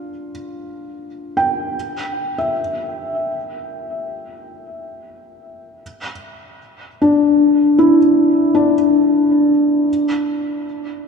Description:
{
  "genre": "ambient",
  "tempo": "free time",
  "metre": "none",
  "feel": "none",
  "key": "unclear",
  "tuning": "A4 = 439 Hz",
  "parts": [
    { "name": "felt-muted upright piano", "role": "solo", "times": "0.0-11.1 s", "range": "D4 to G5", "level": "-15 LUFS", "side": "left 1 dB", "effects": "diffuse ambient delay" }
  ],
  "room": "wet cathedral reverb, RT60 5.9 s",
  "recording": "dark, warm production",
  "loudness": "-14 LUFS",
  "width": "side -5 dB against mid",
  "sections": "0.0-11.1 A section",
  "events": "none",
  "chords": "0.0 G5; 1.7 Em; 5.8 Dsus2; 9.9 N.C.",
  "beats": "free time"
}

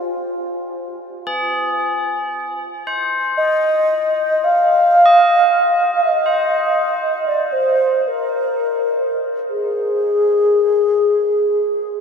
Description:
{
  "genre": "world meditative, free-time meditation music",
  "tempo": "free time",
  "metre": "none",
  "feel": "none",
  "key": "unclear",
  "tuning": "A4 = 440 Hz",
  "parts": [
    { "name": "mellow wooden-headed alto flute", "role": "melody", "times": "0.0-12.0 s", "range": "F4 to F5", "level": "-15 LUFS", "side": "equal", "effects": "ping-pong delay" },
    { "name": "tubular bells", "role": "texture", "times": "1.3-12.0 s", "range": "Ab4 to Eb5", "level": "-23 LUFS", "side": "left 1 dB", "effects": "none" }
  ],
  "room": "wet huge ambient reverb, RT60 8.1 s",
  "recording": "dreamy mix soaked in reverb",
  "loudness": "-14 LUFS",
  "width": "side -6 dB against mid",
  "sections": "0.0-2.1 A section; 2.1-12.0 A section",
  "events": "none",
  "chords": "none",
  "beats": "free time"
}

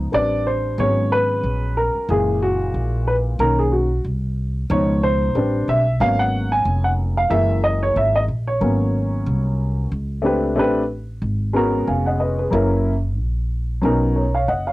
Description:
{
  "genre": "hip hop, jazz-hop",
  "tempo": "92 BPM",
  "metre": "4/4",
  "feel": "swing 58% on 16ths",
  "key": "unclear",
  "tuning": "A4 = 440 Hz",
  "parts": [
    { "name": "dark upright piano", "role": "accompaniment", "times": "0.0-14.7 s", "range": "A#2 to G#5", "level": "-19 LUFS", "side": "equal", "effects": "cassette tape" },
    { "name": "upright bass", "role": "bass", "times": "0.0-14.7 s", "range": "E#1 to C#2", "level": "-21 LUFS", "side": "equal", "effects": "none" }
  ],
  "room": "little or no reverb",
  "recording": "home recording on cassette",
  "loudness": "-17 LUFS",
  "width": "side -18 dB against mid",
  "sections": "0.0-9.9 A section; 9.9-14.7 B section",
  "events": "upright piano solo 0.0-9.9",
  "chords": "0.1 Am11; 0.8 G#m11; 2.1 F#7; 3.4 Bmaj9; 4.7 C#9; 5.4 Am11; 6.0 G#m11; 7.3 F#7; 8.6 G#m11; 9.9 Bm9/C#; 10.6 Am11; 11.2 G#m11; 12.5 F#7; 13.8 Bmaj9",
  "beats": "0.14 0.79 1.44 | 2.09 2.74 3.40 4.05 | 4.70 5.35 6.00 6.66 | 7.31 7.96 8.61 9.27 | 9.92 10.57 11.22 11.87 | 12.53 13.18 13.83 14.48"
}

